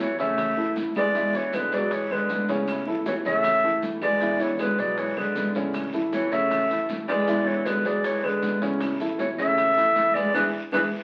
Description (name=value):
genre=latin, Cuban son and guajira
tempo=157 BPM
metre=4/4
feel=straight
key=A major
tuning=A4 = 439 Hz
part: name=mellow clarinet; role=melody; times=0.0-10.8 s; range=B4 to E5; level=-26 LUFS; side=equal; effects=none
part: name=rich viola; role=second line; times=0.0-10.9 s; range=D3 to A3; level=-35 LUFS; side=equal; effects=none
part: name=nylon-string guitar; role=accompaniment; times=0.0-10.9 s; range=B2 to E4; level=-35 LUFS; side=equal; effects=none
part: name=warm baby grand piano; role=arpeggios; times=0.0-10.9 s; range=C#3 to E5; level=-30 LUFS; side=equal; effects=none
part: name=upright bass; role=bass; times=0.0-10.9 s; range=A1 to A2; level=-46 LUFS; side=equal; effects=none
part: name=bongos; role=percussion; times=0.0-10.8 s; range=none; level=-42 LUFS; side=equal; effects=none
part: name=congas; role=percussion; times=0.0-10.8 s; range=none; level=-42 LUFS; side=equal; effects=none
part: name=guiro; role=percussion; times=0.0-10.8 s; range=none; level=-46 LUFS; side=equal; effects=none
part: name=maracas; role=percussion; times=0.0-10.8 s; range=none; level=-49 LUFS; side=equal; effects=none
part: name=claves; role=percussion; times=0.4-10.8 s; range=none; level=-43 LUFS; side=equal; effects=none
room=wet studio reverb, RT60 0.8 s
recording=very old 78 rpm record, vinyl crackle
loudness=-24 LUFS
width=mono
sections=0.0-11.0 A section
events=band accent 10.3-11.0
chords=0.0 A; 1.1 E7; 2.7 A; 4.2 E7; 5.7 A; 7.3 E7; 8.8 A; 10.3 E7